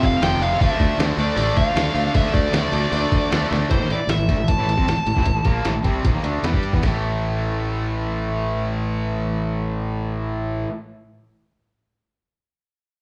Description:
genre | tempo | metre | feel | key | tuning
hard rock | 153 BPM | 4/4 | straight | A minor | A4 = 438 Hz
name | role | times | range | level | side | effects
bluesy overdriven lead guitar | melody | 0.0-6.4 s | C5 to A5 | -26 LUFS | equal | distortion
distorted electric guitar | riff | 0.0-10.7 s | F2 to G4 | -30 LUFS | equal | overdrive
distorted electric guitar | riff | 0.0-10.7 s | F2 to G4 | -29 LUFS | equal | distortion
sludgy distorted guitar | riff | 0.0-3.7 s | F2 to D4 | -32 LUFS | equal | none
modern bright fingered electric bass | bass | 0.0-10.6 s | F1 to G2 | -27 LUFS | equal | none
lo-fi sampler-style drum kit | drums | 0.0-6.9 s | crash cymbal, hi-hat, kick drum, snare drum | -24 LUFS | equal | none
room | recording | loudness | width
moderate large studio reverb, RT60 1.2 s | band playing live in one room | -21 LUFS | mono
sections
0.0-3.7 A section; 3.7-6.8 B section; 6.8-10.0 C section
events
drum fill 3.5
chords
0.0 F; 0.6 Dm; 3.7 Am; 6.8 A5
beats
0.21 | 0.60 0.98 1.37 1.76 | 2.15 2.53 2.92 3.31 | 3.70 4.09 4.48 4.87 | 5.26 5.65 6.05 6.44 | 6.83 7.22 7.62 8.01 | 8.40 8.80 9.19 9.58

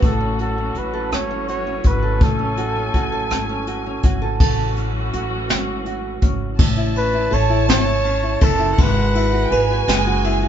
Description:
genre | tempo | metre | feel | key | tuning
six-eight pop ballad | 55 BPM (dotted quarters) | 6/8 | straight | A major | A4 = 440 Hz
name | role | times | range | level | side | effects
warm flugelhorn | melody | 0.0-10.3 s | A4 to C#5 | -23 LUFS | equal | none
nylon-string guitar | accompaniment | 0.0-10.5 s | A2 to B4 | -23 LUFS | right 1 dB | none
muted studio string section | sustained chords | 0.0-6.6 s | E3 to G#5 | -28 LUFS | equal | none
upright bass | bass | 0.0-10.5 s | F#1 to A1 | -23 LUFS | equal | none
jazz brush drum kit | drums | 0.0-10.4 s | crash cymbal, hi-hat, kick drum, ride cymbal, rim click, snare drum | -19 LUFS | equal | none
rich chamber violin section | second line | 6.6-10.5 s | F#5 to A5 | -26 LUFS | right 5 dB | none
room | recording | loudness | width
light reverb | band playing live in one room, nothing above 7.6 kHz | -16 LUFS | side -9 dB against mid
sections
0.0-4.4 A section; 4.4-6.6 B section; 6.6-10.5 C section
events
none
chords
0.0 F#m7; 6.6 A; 8.8 Eadd9/G#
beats
| 0.03 1.12 | 2.22 3.31 | 4.41 5.50 | 6.60 7.69 | 8.78 9.88

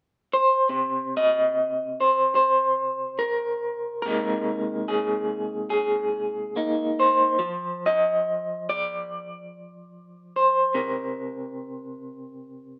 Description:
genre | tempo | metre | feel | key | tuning
folk, solo fingerstyle acoustic guitar | 72 BPM | 4/4 | swing 57% on 8ths | unclear | A4 = 444 Hz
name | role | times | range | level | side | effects
electric guitar through a small old amp | solo | 0.3-12.8 s | C3 to Eb5 | -25 LUFS | equal | tremolo
room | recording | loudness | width
moderate small room ambience, RT60 0.5 s | none | -24 LUFS | mono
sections
0.7-12.8 A section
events
none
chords
0.0 N.C.; 4.0 Abadd9/C; 7.4 N.C.; 10.7 C7(no3)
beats
| 0.69 1.53 2.37 3.21 | 4.04 4.88 5.72 6.55 | 7.39 8.23 9.06 9.90 | 10.73 11.57 12.41

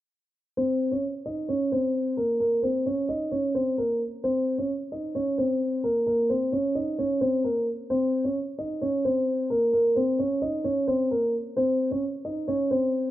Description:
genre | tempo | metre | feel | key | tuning
hip hop | 131 BPM | 4/4 | half-time | Bb minor | A4 = 439 Hz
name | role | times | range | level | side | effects
clear concert grand piano | melody | 0.6-13.1 s | Bb3 to Eb5 | -24 LUFS | equal | low-pass filter
room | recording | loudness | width
light reverb | dry, gritty hardware recording, low-pass filter | -24 LUFS | side -14 dB against mid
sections
0.6-13.1 A section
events
filter sweep 0.6-13.1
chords
0.6 Bbmadd9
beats
| 0.57 1.03 1.49 1.94 | 2.40 2.86 3.32 3.78 | 4.23 4.69 5.15 5.61 | 6.07 6.52 6.98 7.44 | 7.90 8.36 8.81 9.27 | 9.73 10.19 10.65 11.10 | 11.56 12.02 12.48 12.94

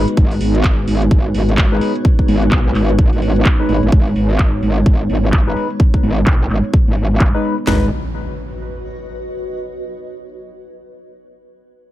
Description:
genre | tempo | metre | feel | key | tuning
bass house | 128 BPM | 4/4 | swing 60% on 16ths | G# minor | A4 = 439 Hz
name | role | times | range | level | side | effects
dark analog pad | sustained chords | 0.0-7.9 s | G#3 to C#5 | -23 LUFS | equal | chorus, sidechain pumping
percussive organ stab | stabs | 0.0-7.9 s | G#3 to B4 | -23 LUFS | left 3 dB | lush chorus, sidechain pumping, ping-pong delay
metallic wobble bass | bass | 0.0-7.9 s | G#1 to B1 | -16 LUFS | equal | chorus, tube saturation, sidechain pumping
granular cloud pad | texture | 0.0-9.5 s | F#4 to D#5 | -29 LUFS | left 1 dB | built-in reverb, sidechain pumping
house drum kit | drums | 0.1-7.7 s | handclaps, hi-hat | -24 LUFS | right 1 dB | low-pass filter on hats, low-pass filter on cymbals, low-pass filter on snare, low-pass filter on room
house drum kit | drums | 0.2-7.8 s | handclaps, kick drum, snare drum, toms | -13 LUFS | equal | none
impact | sound effects | 7.7-9.5 s | none | -28 LUFS | equal | none
room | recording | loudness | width
little or no reverb | none | -12 LUFS | side -14 dB against mid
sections
0.0-7.7 A section; 7.7-9.5 B section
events
fade-out on ambient pad 0.0-7.7; filter sweep on drum 0.0-7.7; filter sweep on synth stab 0.0-7.7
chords
0.0 G#m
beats
| 0.17 0.64 1.11 1.58 | 2.05 2.52 2.99 3.45 | 3.92 4.39 4.86 5.33 | 5.80 6.27 6.74 7.20 | 7.67 8.14 8.61 9.08

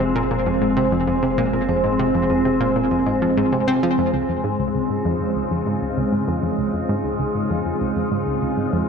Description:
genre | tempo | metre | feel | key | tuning
ambient, sequencer-driven space music | 98 BPM | 4/4 | straight | Db major from 4.1 s | A4 = 441 Hz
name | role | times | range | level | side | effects
evolving wavetable pad | sustained chords | 0.0-8.9 s | Db3 to F4 | -22 LUFS | left 1 dB | chorus, built-in reverb, phaser
vibraphone with soft mallets | arpeggios | 0.0-8.8 s | C4 to C5 | -24 LUFS | right 2 dB | auto-pan, tape echo
analog pluck | riff | 0.0-8.8 s | Db2 to C4 | -23 LUFS | equal | chorus, tape echo
round analog bass | bass | 0.0-4.1 s | F1 | -33 LUFS | left 1 dB | none
room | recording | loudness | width
wet concert hall reverb, RT60 2.3 s | none | -18 LUFS | side -6 dB against mid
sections
0.0-4.1 A section; 4.1-8.9 B section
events
filter sweep on synth arpeggio sound 4.1-8.9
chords
0.0 Fm; 4.1 Dbmaj7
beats
0.46 1.07 | 1.69 2.30 2.91 3.52 | 4.14 4.75 5.36 5.97 | 6.58 7.20 7.81 8.42

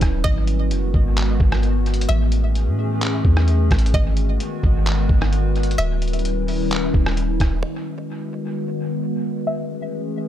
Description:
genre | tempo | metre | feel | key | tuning
hip hop, atmospheric cloud-rap | 130 BPM | 4/4 | half-time | G# phrygian | A4 = 435 Hz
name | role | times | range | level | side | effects
string-like resonator pluck | melody | 0.0-10.3 s | D#5 to E5 | -30 LUFS | equal | chorus, low-pass filter, dub echo
warbly tape-like pad | sustained chords | 0.0-10.3 s | D#3 to B4 | -24 LUFS | left 1 dB | chorus, built-in reverb, sidechain pumping, low-pass filter
soft 808-style bass | bass | 0.0-7.6 s | D#1 to A2 | -19 LUFS | equal | none
trip hop sampler-style drum kit | drums | 0.0-7.5 s | handclaps, hi-hat, kick drum, rim click | -22 LUFS | equal | vintage 12-bit sampler grit
room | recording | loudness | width
digital ambience | echo-heavy mix | -18 LUFS | side -11 dB against mid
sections
0.0-7.6 A section; 7.6-10.3 B section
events
filter sweep 7.6-10.3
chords
0.2 G#m7; 2.1 Amaj9; 3.9 G#m7; 5.8 D#7b9b13; 7.6 G#m7; 9.5 Amaj9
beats
| 0.25 0.71 1.17 1.63 | 2.09 2.56 3.02 3.48 | 3.94 4.40 4.86 5.32 | 5.79 6.25 6.71 7.17 | 7.63 8.09 8.55 9.02 | 9.48 9.94

